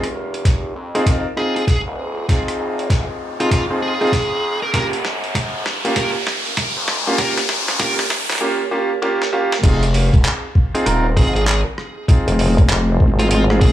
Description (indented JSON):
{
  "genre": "glitch hop",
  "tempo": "98 BPM",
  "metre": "4/4",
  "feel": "swing 63% on 16ths",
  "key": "F minor",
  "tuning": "A4 = 442 Hz",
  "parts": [
    { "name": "gritty driven synth bass", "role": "bass", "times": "0.0-11.6 s", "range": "Eb1 to G2", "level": "-23 LUFS", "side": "equal", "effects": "overdrive, high-pass filter" },
    { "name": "boom bap sampler-style drum kit", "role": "drums", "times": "0.0-13.7 s", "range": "crash cymbal, handclaps, hi-hat, rim click, snare drum, toms", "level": "-24 LUFS", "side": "equal", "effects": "high-pass filter on snare, studio reverb, high-pass filter on hats, high-pass filter on toms, high-pass filter on cymbals" },
    { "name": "riser", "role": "sound effects", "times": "1.3-8.4 s", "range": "none", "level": "-24 LUFS", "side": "left 1 dB", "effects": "none" },
    { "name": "electronic kick drum", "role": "drums", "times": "0.5-13.7 s", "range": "none", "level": "-15 LUFS", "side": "equal", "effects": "studio reverb" },
    { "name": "bright grand piano", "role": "stabs", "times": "0.9-13.7 s", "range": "Bb3 to Bb4", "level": "-22 LUFS", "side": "right 1 dB", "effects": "sidechain pumping, digital delay" },
    { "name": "dark smooth lead guitar", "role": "melody", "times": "1.4-13.7 s", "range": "F4 to Bb4", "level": "-25 LUFS", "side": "right 1 dB", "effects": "overdrive, vintage 12-bit sampler grit, digital delay" },
    { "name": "vowel-sweep wobble bass", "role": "bass", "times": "12.3-13.7 s", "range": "F1 to Ab1", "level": "-15 LUFS", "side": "equal", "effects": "chorus" }
  ],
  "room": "light reverb, digital ambience",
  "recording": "high-pass filter, small room ambience",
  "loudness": "-15 LUFS",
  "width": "side -12 dB against mid",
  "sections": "0.0-9.6 A section; 9.6-13.7 B section",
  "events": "build-up 0.0-9.6; drum fill 0.0-8.4, 9.0-9.6; filter sweep 0.0-9.6; riser 1.3-8.4; drop 9.6-13.7",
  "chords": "0.0 Fm7; 4.7 Gm7b5; 9.6 Fm7"
}